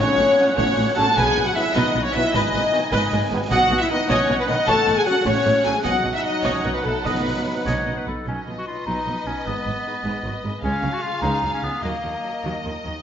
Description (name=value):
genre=cinematic, heroic adventure film score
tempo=102 BPM (dotted quarters)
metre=6/8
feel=straight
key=unclear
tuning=A4 = 440 Hz
part: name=rich symphonic violin section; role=melody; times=0.0-13.0 s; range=A4 to A5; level=-25 LUFS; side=left 1 dB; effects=none
part: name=mellow hollow concert flute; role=second line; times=0.0-7.6 s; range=A4 to A5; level=-27 LUFS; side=left 1 dB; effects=none
part: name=warm symphonic violin section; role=second line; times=0.0-12.9 s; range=G#4 to A5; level=-29 LUFS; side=equal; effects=none
part: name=warm symphonic viola section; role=accompaniment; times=0.0-12.9 s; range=E#3 to G#5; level=-27 LUFS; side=right 1 dB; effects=none
part: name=dark French horn section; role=sustained chords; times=0.0-12.9 s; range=F#3 to A4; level=-24 LUFS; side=left 3 dB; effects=none
part: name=dark symphonic cello section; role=bass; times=0.0-12.9 s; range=G#2 to D#3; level=-29 LUFS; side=right 2 dB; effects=none
part: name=warm studio double bass section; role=bass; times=0.0-12.9 s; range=G#1 to D#2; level=-30 LUFS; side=right 2 dB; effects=none
part: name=concert snare drum, concert bass drum and clash cymbals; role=drums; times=0.2-7.9 s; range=none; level=-30 LUFS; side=equal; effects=none
part: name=bright trombone section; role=sustained chords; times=0.4-8.1 s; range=D#3 to D#4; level=-30 LUFS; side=right 3 dB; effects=none
part: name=bright clarinet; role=second line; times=7.7-12.8 s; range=A#3 to C#5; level=-27 LUFS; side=left 1 dB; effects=none
room=wet scoring stage reverb, RT60 1.9 s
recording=nothing above 7.6 kHz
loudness=-18 LUFS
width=side -8 dB against mid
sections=0.0-8.3 A section; 8.3-13.0 B section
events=none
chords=0.0 F#m/A; 1.2 B5; 2.3 G#m; 3.5 B; 4.7 F#m/A; 5.8 B; 9.5 G#m; 10.6 C#; 11.8 D#m